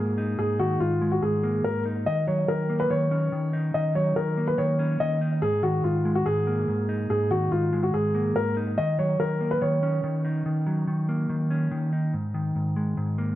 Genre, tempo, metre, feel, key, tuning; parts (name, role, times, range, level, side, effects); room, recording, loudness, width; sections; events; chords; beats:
hip hop; 143 BPM; 4/4; half-time; Eb minor; A4 = 441 Hz
dark grand piano; melody; 0.0-10.4 s; F4 to Eb5; -26 LUFS; left 1 dB; low-pass filter, digital delay
mellow electric guitar; accompaniment; 0.0-13.4 s; Ab2 to Eb4; -25 LUFS; equal; spring reverb, low-pass filter
light reverb, small room reverb; -23 LUFS; side -14 dB against mid
0.0-8.8 A section; 8.8-13.4 B section
0.0 Absus2; 2.1 Ebm7; 5.4 Absus2; 8.8 Ebm7; 12.1 Absus2
| 0.39 0.81 1.23 1.64 | 2.06 2.48 2.90 3.32 | 3.74 4.16 4.58 5.00 | 5.42 5.84 6.26 6.68 | 7.10 7.52 7.94 8.36 | 8.78 9.20 9.62 10.04 | 10.46 10.88 11.29 11.71 | 12.13 12.55 12.97